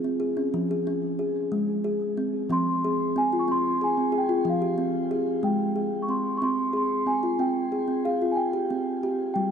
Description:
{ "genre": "world meditative, meditative tuned percussion", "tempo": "61 BPM (dotted quarters)", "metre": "6/8", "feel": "straight", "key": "F hirajoshi", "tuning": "A4 = 439 Hz", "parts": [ { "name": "kalimba", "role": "arpeggios", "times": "0.0-9.5 s", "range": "F3 to Ab4", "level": "-25 LUFS", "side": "equal", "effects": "shimmer reverb, diffuse ambient delay" }, { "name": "large celesta", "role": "melody", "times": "2.5-9.5 s", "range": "F5 to Db6", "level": "-28 LUFS", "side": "right 1 dB", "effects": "shimmer reverb" } ], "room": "wet church reverb, RT60 3.6 s", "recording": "dark, warm production", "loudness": "-23 LUFS", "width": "side -7 dB against mid", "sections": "0.0-6.4 A section; 6.4-9.5 B section", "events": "none", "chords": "0.0 Fm; 8.4 Gsus4" }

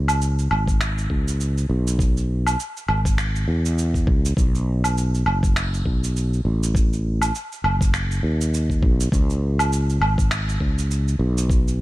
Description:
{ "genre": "organic downtempo", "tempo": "101 BPM", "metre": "4/4", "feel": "swing 57% on 16ths", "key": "C# minor", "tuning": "A4 = 441 Hz", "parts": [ { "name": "sustaining fretless electric bass", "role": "bass", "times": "0.0-11.8 s", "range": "F#1 to E2", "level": "-21 LUFS", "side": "equal", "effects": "none" }, { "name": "electronic woodblock, cabasa and finger snaps", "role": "drums", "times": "0.1-11.8 s", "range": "none", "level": "-26 LUFS", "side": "right 1 dB", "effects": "none" }, { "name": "electronic kick drum", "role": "drums", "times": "0.7-11.6 s", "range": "none", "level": "-21 LUFS", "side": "equal", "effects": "none" } ], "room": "little or no reverb", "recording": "none", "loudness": "-19 LUFS", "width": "side -17 dB against mid", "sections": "0.0-11.8 A section", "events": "none", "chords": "none" }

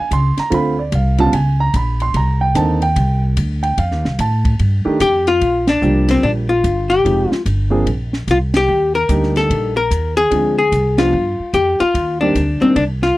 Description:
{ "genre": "jazz, small-group swing and bop", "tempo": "147 BPM", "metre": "4/4", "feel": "swing 64% on 8ths", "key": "Bb major", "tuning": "A4 = 440 Hz", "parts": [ { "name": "warm grand piano", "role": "accompaniment", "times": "0.0-12.8 s", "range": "Db3 to C6", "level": "-19 LUFS", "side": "right 3 dB", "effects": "none" }, { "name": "upright bass", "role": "bass", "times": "0.1-13.2 s", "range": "F1 to A2", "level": "-18 LUFS", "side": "equal", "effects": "none" }, { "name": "compact cocktail drum kit", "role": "drums", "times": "0.1-13.1 s", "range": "hi-hat, kick drum, ride cymbal, snare drum", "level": "-23 LUFS", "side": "equal", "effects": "none" }, { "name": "archtop guitar, miked and amplified", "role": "melody", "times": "5.0-13.2 s", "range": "C4 to Bb4", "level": "-15 LUFS", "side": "left 2 dB", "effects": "none" } ], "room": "little or no reverb", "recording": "dry, close 1970s-style studio recording", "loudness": "-13 LUFS", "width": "side -18 dB against mid", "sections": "0.0-5.4 A section; 5.4-13.2 B section", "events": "band accent 5.6, 8.5, 10.9", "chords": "0.0 Dbmaj7(no3); 0.5 Dm7; 1.3 Bbm9; 2.1 Cm9; 3.8 F9; 5.4 Bb6; 7.0 Fm9; 7.9 Bbsus2; 8.7 Ebmaj7; 10.3 Dm7b5; 11.1 Fsus2; 11.9 Cm7" }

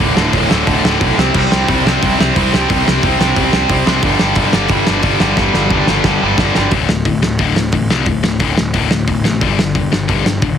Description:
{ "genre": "punk rock", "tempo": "179 BPM", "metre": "4/4", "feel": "straight", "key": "unclear", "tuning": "A4 = 439 Hz", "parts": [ { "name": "distorted electric guitar", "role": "riff", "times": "0.0-6.7 s", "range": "D2 to C4", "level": "-20 LUFS", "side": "right 1 dB", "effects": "overdrive" }, { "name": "tight distorted guitar", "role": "riff", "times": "0.0-10.6 s", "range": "D2 to C4", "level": "-16 LUFS", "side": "left 10 dB", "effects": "distortion" }, { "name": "tight distorted guitar", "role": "riff", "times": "0.0-6.7 s", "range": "D2 to C4", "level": "-19 LUFS", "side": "right 21 dB", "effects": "distortion" }, { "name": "fuzz picked electric bass", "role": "bass", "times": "0.0-10.6 s", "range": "D1 to C2", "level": "-19 LUFS", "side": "right 1 dB", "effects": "overdrive" }, { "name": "loose indie drum kit", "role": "drums", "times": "0.0-10.5 s", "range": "crash cymbal, hi-hat, kick drum, snare drum", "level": "-16 LUFS", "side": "right 1 dB", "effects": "none" } ], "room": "little or no reverb", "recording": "heavily compressed radio sound, multiband compression", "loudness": "-11 LUFS", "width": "side -8 dB against mid", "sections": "0.0-6.7 A section; 6.7-10.6 B section", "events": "drum fill 5.4-6.7", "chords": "0.0 D5; 1.2 C5; 4.0 G5; 6.7 D5; 9.4 G5" }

